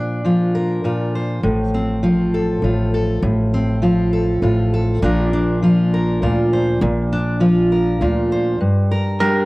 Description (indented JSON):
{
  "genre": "folk",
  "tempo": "100 BPM",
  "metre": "3/4",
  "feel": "straight",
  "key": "Bb major",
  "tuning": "A4 = 441 Hz",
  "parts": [
    { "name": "fingerpicked steel-string acoustic guitar", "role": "accompaniment", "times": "0.0-9.5 s", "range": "G2 to C5", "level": "-16 LUFS", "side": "equal", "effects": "cassette tape" },
    { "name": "upright bass", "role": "bass", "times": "1.4-8.6 s", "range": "A1 to D2", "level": "-21 LUFS", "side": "equal", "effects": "none" },
    { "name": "archtop guitar, miked and amplified", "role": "second line", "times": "9.2-9.5 s", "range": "Bb4", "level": "-16 LUFS", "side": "right 2 dB", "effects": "cassette tape" }
  ],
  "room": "moderate spring reverb, RT60 1.1 s",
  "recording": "home recording on cassette",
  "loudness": "-15 LUFS",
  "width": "side -21 dB against mid",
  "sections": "0.0-8.6 A section",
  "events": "none",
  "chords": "0.0 Bb; 1.4 F/A; 5.0 Bb; 8.6 Gm"
}